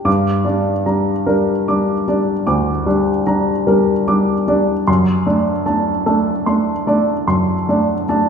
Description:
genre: classical, romantic nocturne for solo piano.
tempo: 50 BPM (dotted quarters).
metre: 12/8.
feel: rubato.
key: G minor.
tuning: A4 = 440 Hz.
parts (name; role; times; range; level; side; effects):
warm baby grand piano; solo; 0.0-8.3 s; D2 to D6; -14 LUFS; equal; none.
room: wet recital hall reverb, RT60 1.5 s.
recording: heard from further back in the room, nothing above 10.9 kHz.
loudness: -14 LUFS.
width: side -6 dB against mid.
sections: 0.1-8.3 A section.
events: none.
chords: 0.1 Gm; 4.9 D7/F#.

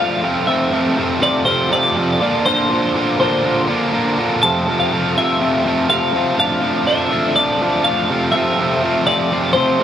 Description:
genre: rock.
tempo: 122 BPM.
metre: 4/4.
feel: straight.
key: unclear.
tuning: A4 = 440 Hz.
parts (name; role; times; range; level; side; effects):
twelve-string electric guitar; melody; 0.0-9.8 s; C5 to A5; -18 LUFS; left 1 dB; wide subtle chorus, tape echo.
crunchy overdriven guitar; riff; 0.0-9.8 s; F2 to F4; -16 LUFS; equal; none.
room: light reverb, digital ambience.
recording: vinyl crackle.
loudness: -14 LUFS.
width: side -10 dB against mid.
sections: 0.0-9.8 A section.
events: none.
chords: 0.2 Fmaj7; 2.2 Bb; 4.4 Fmaj7; 6.4 Dm/F; 8.1 Fmaj7.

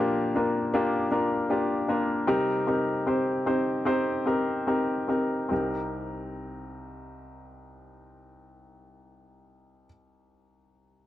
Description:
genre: pop.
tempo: 71-80 BPM.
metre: 4/4.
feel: straight.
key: C minor.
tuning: A4 = 440 Hz.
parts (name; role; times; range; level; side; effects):
clear baby grand piano; accompaniment; 0.0-11.1 s; C2 to C5; -25 LUFS; left 1 dB; none.
room: light reverb.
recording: dry, close 1970s-style studio recording.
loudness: -24 LUFS.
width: side -13 dB against mid.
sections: 0.0-5.5 A section; 5.5-8.9 B section.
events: slowing down 0.0-5.5.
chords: 0.0 Bb; 2.3 Cm7.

